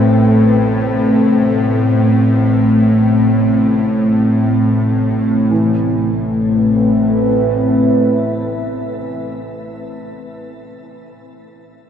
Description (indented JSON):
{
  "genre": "dark ambient drone",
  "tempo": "free time",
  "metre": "none",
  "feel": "none",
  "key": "A minor",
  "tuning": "A4 = 440 Hz",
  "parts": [
    { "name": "deep dark ambient pad", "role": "sustained chords", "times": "0.0-9.6 s", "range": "A3 to E5", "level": "-14 LUFS", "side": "left 1 dB", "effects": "chorus, built-in reverb, shimmer reverb" },
    { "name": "dark concert grand piano", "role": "arpeggios", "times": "0.0-11.9 s", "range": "G2 to G3", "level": "-28 LUFS", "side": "right 2 dB", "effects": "diffuse ambient delay, shimmer reverb" },
    { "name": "bowed-like drone", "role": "drone", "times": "0.0-9.1 s", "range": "A1 to A2", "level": "-17 LUFS", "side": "equal", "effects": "built-in reverb" }
  ],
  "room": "wet huge ambient reverb, RT60 7.8 s",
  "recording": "none",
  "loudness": "-12 LUFS",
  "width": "side -8 dB against mid",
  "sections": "0.0-5.5 A section; 5.5-10.2 B section",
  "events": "none",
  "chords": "0.0 Amadd9"
}